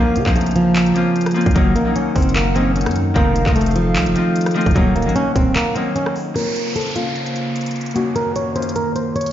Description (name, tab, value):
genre	hip hop, trap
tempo	150 BPM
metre	4/4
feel	half-time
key	Bb harmonic minor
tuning	A4 = 440 Hz
part	flamenco guitar	melody	0.0-9.3 s	F3 to Db5	-19 LUFS	right 1 dB	low-pass filter, digital delay
part	Celtic harp	accompaniment	0.0-9.3 s	Eb3 to Gb4	-22 LUFS	left 4 dB	low-pass filter
part	warbly tape-like pad	sustained chords	0.0-9.3 s	Gb2 to Bb5	-27 LUFS	right 1 dB	chorus, built-in reverb, low-pass filter
part	growling 808-style bass	bass	0.0-5.6 s	Eb1 to Db3	-20 LUFS	equal	none
part	trap drum kit	drums	0.2-9.3 s	handclaps, hi-hat, kick drum, rim click	-21 LUFS	equal	none
part	downlifter	sound effects	6.4-9.3 s	none	-29 LUFS	right 1 dB	none
room	light reverb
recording	played on a big sound system in a bare room, stone room reverb, nothing above 7.5 kHz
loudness	-15 LUFS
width	side -11 dB against mid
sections	0.0-6.4 A section; 6.4-9.3 B section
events	break 5.6-6.4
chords	0.0 Bbmadd9; 1.6 Gb6; 3.2 F7; 4.8 Ebm7; 6.4 Bbmadd9; 8.0 Gb6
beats	0.36 0.76 1.16 | 1.56 1.96 2.36 2.76 | 3.16 3.56 3.96 4.36 | 4.76 5.16 5.56 5.96 | 6.36 6.76 7.16 7.56 | 7.96 8.36 8.76 9.16